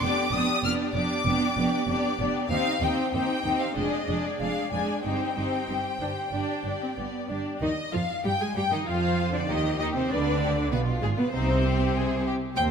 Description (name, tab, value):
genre	quick classical-period movement for string orchestra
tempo	96 BPM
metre	4/4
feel	straight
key	C minor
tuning	A4 = 440 Hz
part	rich studio violin section	melody	0.0-12.6 s	G#4 to F6	-30 LUFS	left 4 dB	none
part	rich studio violin section	second line	0.0-12.7 s	Eb4 to D5	-32 LUFS	left 3 dB	none
part	rich studio viola section	accompaniment	0.0-12.7 s	Ab3 to Ab4	-29 LUFS	right 2 dB	none
part	rich studio double bass section	bass	0.0-12.7 s	F1 to G2	-32 LUFS	right 3 dB	none
part	warm studio cello section	bass	0.0-12.7 s	Eb2 to Ab3	-32 LUFS	right 2 dB	none
room	moderate concert hall reverb, RT60 2.5 s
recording	none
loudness	-24 LUFS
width	side -6 dB against mid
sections	0.0-7.6 A section; 7.6-12.7 B section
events	none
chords	0.0 G7/F; 2.5 Cm/Eb; 3.8 Ddim/F; 5.0 Cm/G; 6.3 G; 7.6 Cm/Eb; 10.1 G#dim7; 11.3 Cm